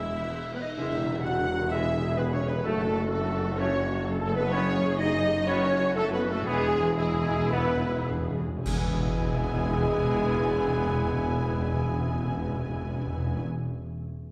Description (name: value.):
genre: cinematic, heroic adventure film score.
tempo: 102-130 BPM.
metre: 4/4.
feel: straight.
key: E major.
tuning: A4 = 440 Hz.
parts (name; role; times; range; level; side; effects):
warm studio violin section; melody; 0.0-13.4 s; E4 to G#5; -39 LUFS; equal; none.
large flute ensemble; second line; 0.0-13.4 s; G#4 to G#5; -40 LUFS; equal; none.
warm oboe; second line; 0.0-0.5 s; E5; -43 LUFS; equal; none.
warm symphonic violin section; second line; 0.0-13.4 s; G#4 to G#5; -41 LUFS; equal; none.
warm symphonic viola section; accompaniment; 0.0-13.4 s; G#3 to A4; -39 LUFS; equal; none.
dark symphonic cello section; bass; 0.0-13.4 s; E2 to F#2; -38 LUFS; equal; none.
warm studio double bass section; bass; 0.0-13.4 s; E1 to F#1; -36 LUFS; equal; none.
warm tuba; bass; 0.0-13.4 s; E1 to F#1; -38 LUFS; equal; none.
warm clarinet; second line; 0.5-13.4 s; G#4 to F#5; -37 LUFS; equal; none.
dark French horn section; sustained chords; 0.5-13.4 s; G#3 to F#4; -34 LUFS; equal; none.
clear trombone section; sustained chords; 0.8-13.4 s; B2 to B3; -40 LUFS; equal; none.
tam-tam, clash cymbals and concert bass drum; percussion; 0.8-2.6, 8.7-9.8 s; none; -40 LUFS; equal; none.
timpani; percussion; 6.5-13.4 s; E2; -35 LUFS; equal; none.
room: wet scoring stage reverb, RT60 1.8 s.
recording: none.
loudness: -27 LUFS.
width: mono.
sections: 0.8-8.7 A section; 8.7-13.3 B section.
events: band accent 0.8-1.2, 8.7-9.2; slowing down 3.6-8.7; timpani fill 6.5-8.7.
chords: 0.0 E; 2.7 F#m; 4.5 Badd9/F#; 6.5 E.